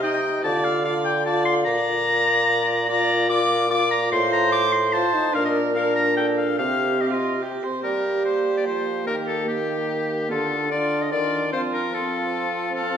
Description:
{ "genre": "classical, renaissance-style consort dance", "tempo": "147 BPM", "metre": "3/4", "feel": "straight", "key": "unclear", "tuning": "A4 = 440 Hz", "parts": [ { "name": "clear oboe", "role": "melody", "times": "0.0-13.0 s", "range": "G4 to D6", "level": "-24 LUFS", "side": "left 3 dB", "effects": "none" }, { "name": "rich viola", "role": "second line", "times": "0.0-13.0 s", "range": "F4 to Eb5", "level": "-27 LUFS", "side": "right 5 dB", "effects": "none" }, { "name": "warm trombone", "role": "accompaniment", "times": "0.0-13.0 s", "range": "Bb3 to F4", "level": "-27 LUFS", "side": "left 2 dB", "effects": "none" }, { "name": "warm bassoon", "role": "bass", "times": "0.0-13.0 s", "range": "A2 to G3", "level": "-26 LUFS", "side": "right 1 dB", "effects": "none" } ], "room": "wet recital hall reverb, RT60 1.6 s", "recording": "heard from further back in the room", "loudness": "-19 LUFS", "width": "side -8 dB against mid", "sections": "0.0-7.8 A section; 7.8-13.0 B section", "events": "none", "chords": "0.4 Dm; 1.7 Bb; 4.1 F/A; 5.3 Bb; 6.6 C5; 7.8 Gm; 9.1 Eb; 10.3 Dm; 11.5 F" }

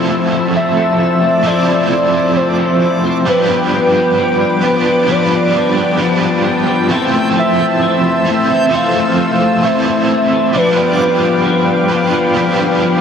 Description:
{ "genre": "dream pop", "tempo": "66 BPM", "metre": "4/4", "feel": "straight", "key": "unclear", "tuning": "A4 = 440 Hz", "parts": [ { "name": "crunchy overdriven guitar", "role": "accompaniment", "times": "0.0-13.0 s", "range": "F3 to B4", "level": "-17 LUFS", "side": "right 4 dB", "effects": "tremolo, ensemble chorus" }, { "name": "lush unison pad", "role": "sustained chords", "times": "0.0-13.0 s", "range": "B4 to E6", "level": "-18 LUFS", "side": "left 1 dB", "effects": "chorus" }, { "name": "electric guitar at the edge of break-up", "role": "arpeggios", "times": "0.0-13.0 s", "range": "E3 to A4", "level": "-16 LUFS", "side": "left 5 dB", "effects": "ensemble chorus, digital delay" }, { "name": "backwards swelling texture", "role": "texture", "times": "1.2-10.9 s", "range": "D5 to G5", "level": "-27 LUFS", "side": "equal", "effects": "built-in reverb, digital delay" }, { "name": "warm velvety synth lead", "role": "melody", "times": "0.6-11.9 s", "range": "B4 to F5", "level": "-16 LUFS", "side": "right 2 dB", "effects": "chorus, digital delay" } ], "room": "moderate plate reverb, RT60 2.7 s", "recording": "heavily compressed radio sound, faint mains hum", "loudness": "-11 LUFS", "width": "side -7 dB against mid", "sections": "0.0-13.0 A section", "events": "none", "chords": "0.0 Fmaj7; 3.3 G7; 6.9 Fmaj7; 10.5 G7" }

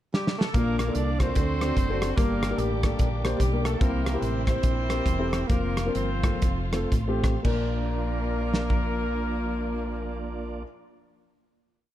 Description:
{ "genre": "uptempo gospel", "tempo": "110-148 BPM", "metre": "4/4", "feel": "swing 61% on 8ths", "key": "Bb major", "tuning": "A4 = 441 Hz", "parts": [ { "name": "warm horn section", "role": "melody", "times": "0.1-10.6 s", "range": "Bb3 to D5", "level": "-35 LUFS", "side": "left 3 dB", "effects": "none" }, { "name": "warm tenor saxophone", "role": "melody", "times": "0.1-10.6 s", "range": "G3 to D4", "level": "-33 LUFS", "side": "right 3 dB", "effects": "none" }, { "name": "modern studio drum kit", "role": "drums", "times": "0.1-8.9 s", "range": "crash cymbal, hi-hat, kick drum, rim click, snare drum", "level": "-26 LUFS", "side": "equal", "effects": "none" }, { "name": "dark upright piano", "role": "accompaniment", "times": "0.5-10.7 s", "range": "Bb1 to C5", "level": "-31 LUFS", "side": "left 2 dB", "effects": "none" }, { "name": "bright tonewheel organ", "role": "sustained chords", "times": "0.5-10.6 s", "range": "Bb3 to D6", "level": "-39 LUFS", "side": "right 5 dB", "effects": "chorus vibrato, stopped rotary speaker" }, { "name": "warm studio string section", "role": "sustained chords", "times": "0.5-10.6 s", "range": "D3 to F4", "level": "-40 LUFS", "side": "equal", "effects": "none" }, { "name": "fingered electric bass", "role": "bass", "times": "0.5-10.6 s", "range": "E1 to D2", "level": "-29 LUFS", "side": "equal", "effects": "none" } ], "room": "little or no reverb", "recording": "dark, warm production", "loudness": "-23 LUFS", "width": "side -13 dB against mid", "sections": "0.0-0.5 pickup bar; 0.5-7.4 breakdown; 7.4-11.8 final chord", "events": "drum fill 0.1-0.5; slowing down 3.8-7.4", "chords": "0.0 N.C.; 0.5 Bb; 1.4 D7; 2.2 Gm; 3.8 C7; 5.5 Fsus4; 6.4 F; 7.4 Bb" }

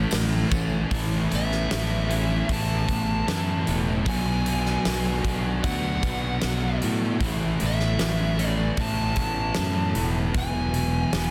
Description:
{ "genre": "rock, shoegaze and dream pop", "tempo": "76 BPM", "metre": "4/4", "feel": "straight", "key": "A major", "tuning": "A4 = 440 Hz", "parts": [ { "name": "biting lead guitar", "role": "melody", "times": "0.0-11.3 s", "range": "E5 to A5", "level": "-34 LUFS", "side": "equal", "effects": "overdrive, analog delay" }, { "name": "twelve-string electric guitar", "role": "arpeggios", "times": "0.0-11.3 s", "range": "E3 to D4", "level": "-36 LUFS", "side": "equal", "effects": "none" }, { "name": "crunchy overdriven guitar", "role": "riff", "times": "0.0-11.3 s", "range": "A2 to C#5", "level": "-32 LUFS", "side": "equal", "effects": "reverse reverb" }, { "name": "thick fuzz guitar", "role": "riff", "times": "0.0-11.3 s", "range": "E2 to B3", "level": "-32 LUFS", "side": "equal", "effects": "distortion, ensemble chorus" }, { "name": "growling fingered electric bass", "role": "bass", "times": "0.0-11.3 s", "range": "E1 to A2", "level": "-30 LUFS", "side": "equal", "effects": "overdrive" }, { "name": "huge arena drum kit", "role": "drums", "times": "0.1-11.3 s", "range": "hi-hat, kick drum, snare drum", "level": "-32 LUFS", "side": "equal", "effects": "none" }, { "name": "tambourine", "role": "percussion", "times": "0.1-0.8 s", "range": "none", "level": "-43 LUFS", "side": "equal", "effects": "none" } ], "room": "studio reverb", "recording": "dense, heavily limited modern master", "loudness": "-25 LUFS", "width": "mono", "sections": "0.9-11.3 A section", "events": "none", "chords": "0.0 A; 0.9 Aadd9; 4.1 Bm; 7.2 Aadd9; 10.3 Esus2" }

